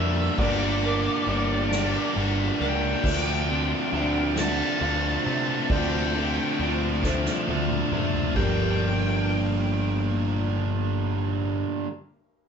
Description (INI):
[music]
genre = post-rock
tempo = 45 BPM (dotted quarters)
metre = 6/8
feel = straight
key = G minor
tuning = A4 = 440 Hz
[part]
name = octave-fuzz lead guitar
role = melody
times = 0.0-11.6 s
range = D5 to A5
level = -31 LUFS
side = equal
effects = distortion
[part]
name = analog string pad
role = sustained chords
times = 0.0-11.6 s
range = Bb3 to G5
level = -39 LUFS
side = equal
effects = none
[part]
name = felt-muted upright piano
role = arpeggios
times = 0.0-8.8 s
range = F4 to F5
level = -36 LUFS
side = right 5 dB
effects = none
[part]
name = mellow electric guitar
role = arpeggios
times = 0.0-11.9 s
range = G2 to Bb4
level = -35 LUFS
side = left 2 dB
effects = none
[part]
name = biting overdriven guitar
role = riff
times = 0.0-11.9 s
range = G2 to D4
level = -30 LUFS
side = left 4 dB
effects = none
[part]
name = distorted electric guitar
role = riff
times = 0.0-11.9 s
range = G2 to D4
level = -29 LUFS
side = right 7 dB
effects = distortion
[part]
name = growling picked electric bass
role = bass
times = 0.0-11.6 s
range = G1 to C3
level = -28 LUFS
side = equal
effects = overdrive
[part]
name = soft-mallet drum kit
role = drums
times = 0.4-8.6 s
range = crash cymbal, kick drum, ride cymbal, snare drum, toms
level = -29 LUFS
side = left 2 dB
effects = none
[sound]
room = wet studio reverb, RT60 0.5 s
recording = band playing live in one room, nothing above 8.0 kHz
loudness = -22 LUFS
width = side -6 dB against mid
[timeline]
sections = 0.0-8.4 A section; 8.4-11.0 B section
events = drum fill 7.0-8.4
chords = 0.0 Gm7; 3.0 Dm7; 8.4 Gm7